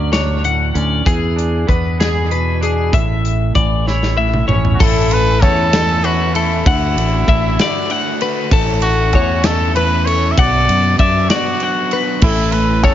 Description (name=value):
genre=math rock and midwest emo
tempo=65 BPM (dotted quarters)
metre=6/8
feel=straight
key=A major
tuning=A4 = 441 Hz
part: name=twangy electric guitar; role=accompaniment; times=0.0-6.7 s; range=A2 to G#4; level=-24 LUFS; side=right 7 dB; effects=dub echo
part: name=twelve-string electric guitar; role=arpeggios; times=0.0-12.9 s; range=G#4 to F#5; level=-19 LUFS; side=left 7 dB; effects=warbly pitch drift
part: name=fingered electric bass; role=bass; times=0.0-12.9 s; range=A1 to F#2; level=-17 LUFS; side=equal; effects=none
part: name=modern studio drum kit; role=drums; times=0.1-12.9 s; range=crash cymbal, hi-hat, kick drum, ride cymbal, snare drum, toms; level=-18 LUFS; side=equal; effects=none
part: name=clear trumpet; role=melody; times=4.7-12.9 s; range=E4 to E5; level=-19 LUFS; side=right 1 dB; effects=dub echo
part: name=crunchy overdriven guitar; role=riff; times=4.8-12.9 s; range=A2 to F#4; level=-21 LUFS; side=right 2 dB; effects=dub echo
room=light reverb, small room ambience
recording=echo-heavy mix, nothing above 7.5 kHz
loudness=-12 LUFS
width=side -11 dB against mid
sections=0.0-4.8 A section; 4.8-12.9 B section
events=drum fill 3.9-4.8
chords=0.0 Dmaj7; 1.1 E7; 2.9 A; 6.7 Dadd9; 8.5 A6; 10.4 Bm; 12.2 A